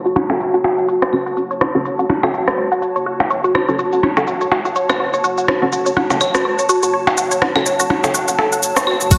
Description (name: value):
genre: minimal techno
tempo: 124 BPM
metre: 4/4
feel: swing 57% on 16ths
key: F# minor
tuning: A4 = 440 Hz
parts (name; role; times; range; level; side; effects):
- saturated sub bass; bass; 0.0-9.2 s; E1 to C#2; -37 LUFS; equal; sidechain pumping, high-pass filter
- warbly tape-like pad; texture; 0.0-9.2 s; F#4 to A5; -24 LUFS; equal; chorus, built-in reverb, sidechain pumping
- resonant blip pluck; riff; 0.1-9.2 s; F#4 to F#5; -21 LUFS; equal; phaser, sidechain pumping, tape echo
- cabasa; drums; 0.1-9.2 s; none; -26 LUFS; equal; low-pass filter on perc
- electronic percussion blips, rim click and claves; percussion; 0.2-9.0 s; none; -22 LUFS; equal; digital delay
- filtered dub chord stab; stabs; 0.3-8.1 s; C#4 to A4; -26 LUFS; equal; phaser, ensemble chorus, digital delay
- electronic kick drum; drums; 9.1-9.2 s; none; -13 LUFS; equal; none
- tambourine; drums; 9.1-9.2 s; none; -24 LUFS; equal; high-pass filter on perc, high-pass filter on room
room: wet lush hall reverb, RT60 1.5 s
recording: heavily compressed radio sound, multiband compression, low-pass filter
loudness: -17 LUFS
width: mono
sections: 0.0-9.1 A section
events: filter sweep on drum 0.0-9.1; filter sweep on synth pluck 0.0-9.1; filter sweep 0.0-9.1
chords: 0.0 F#m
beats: 0.40 0.89 | 1.37 1.85 2.34 2.82 | 3.31 3.79 4.27 4.76 | 5.24 5.72 6.21 6.69 | 7.18 7.66 8.14 8.63 | 9.11